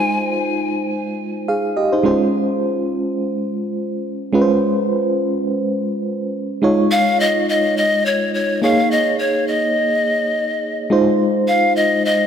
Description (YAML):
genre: pop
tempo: 105 BPM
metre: 4/4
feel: swing 55% on 16ths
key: unclear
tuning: A4 = 438 Hz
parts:
  - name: breathy bright pan flute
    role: melody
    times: 0.0-0.3, 6.9-12.3 s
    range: Db5 to Ab5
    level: -18 LUFS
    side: left 2 dB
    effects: ping-pong delay
  - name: FM electric piano with tremolo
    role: accompaniment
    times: 0.0-12.3 s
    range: Ab3 to F5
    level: -18 LUFS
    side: right 1 dB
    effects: none
room: moderate lush hall reverb, RT60 2.5 s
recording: none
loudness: -16 LUFS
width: side -8 dB against mid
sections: 0.0-6.6 A section; 6.6-12.3 B section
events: none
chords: 0.0 Ab6; 2.1 Dbmaj7; 6.6 Dbadd9; 8.6 Eb7sus4; 10.9 Ab6